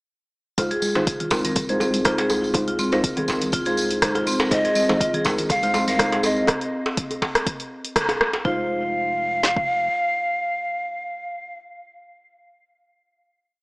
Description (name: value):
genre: afro house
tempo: 122 BPM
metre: 4/4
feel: swing 53% on 16ths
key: F minor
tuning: A4 = 440 Hz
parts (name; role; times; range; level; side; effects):
- marimba with hard mallets; arpeggios; 0.6-8.7 s; C4 to Bb4; -26 LUFS; equal; sidechain pumping, low-pass filter, diffuse ambient delay
- deep mellow chord stab; stabs; 0.6-11.6 s; Ab3 to C5; -26 LUFS; equal; wide subtle chorus, sidechain pumping, diffuse ambient delay
- round analog bass; bass; 0.6-9.9 s; F1 to C2; -40 LUFS; equal; sidechain pumping
- afro-pop drum kit; drums; 0.6-9.7 s; kick drum, snare drum; -26 LUFS; equal; none
- deep house drum kit; drums; 0.6-8.3 s; hi-hat, rim click; -23 LUFS; equal; overdrive
- djembe; percussion; 0.6-8.4 s; none; -27 LUFS; equal; none
- tambourine; percussion; 0.6-6.5 s; none; -32 LUFS; equal; none
- congas; percussion; 0.7-6.3 s; none; -32 LUFS; equal; none
- breathy bright large pan pipes; melody; 4.5-11.6 s; Eb5 to F5; -23 LUFS; equal; diffuse ambient delay
room: wet plate reverb, RT60 1.4 s, small room ambience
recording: dreamy mix soaked in reverb, small speaker sound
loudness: -19 LUFS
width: side -29 dB against mid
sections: 0.6-8.4 groove; 8.4-12.4 final chord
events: band accent 8.0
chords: 0.6 Fm7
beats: | 0.58 1.07 1.56 2.05 | 2.55 3.04 3.53 4.02 | 4.51 5.00 5.50 5.99 | 6.48 6.97 7.46 7.96 | 8.45 8.94 9.43 9.92 | 10.41 10.91 11.40